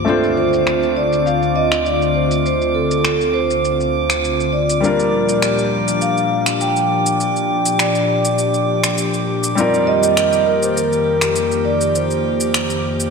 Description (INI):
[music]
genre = sunset chillout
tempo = 101 BPM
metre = 4/4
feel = straight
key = unclear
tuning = A4 = 440 Hz
[part]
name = clear baby grand piano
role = accompaniment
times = 0.0-13.1 s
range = G3 to C5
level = -23 LUFS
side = left 2 dB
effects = auto-pan, digital delay
[part]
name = airy breathy pad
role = sustained chords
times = 0.0-13.1 s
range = D2 to G4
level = -20 LUFS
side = left 2 dB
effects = chorus
[part]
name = drifting glass-harmonics texture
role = texture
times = 0.0-13.1 s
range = D6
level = -26 LUFS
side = right 3 dB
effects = chorus, built-in reverb
[part]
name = vibraphone with soft mallets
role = melody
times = 0.1-13.1 s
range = A4 to G5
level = -18 LUFS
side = right 2 dB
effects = ping-pong delay
[part]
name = electronic shaker and finger snaps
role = drums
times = 0.1-13.1 s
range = none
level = -22 LUFS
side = equal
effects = overdrive, low-pass filter on perc, low-pass filter on snare, gated reverb
[sound]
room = wet lush hall reverb, RT60 2.7 s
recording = bright 1980s-style digital production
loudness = -14 LUFS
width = side -5 dB against mid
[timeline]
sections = 0.0-13.1 A section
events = filter sweep on analog synth pad 0.0-13.1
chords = 0.1 Dm7; 4.8 Bb6; 9.6 F9sus4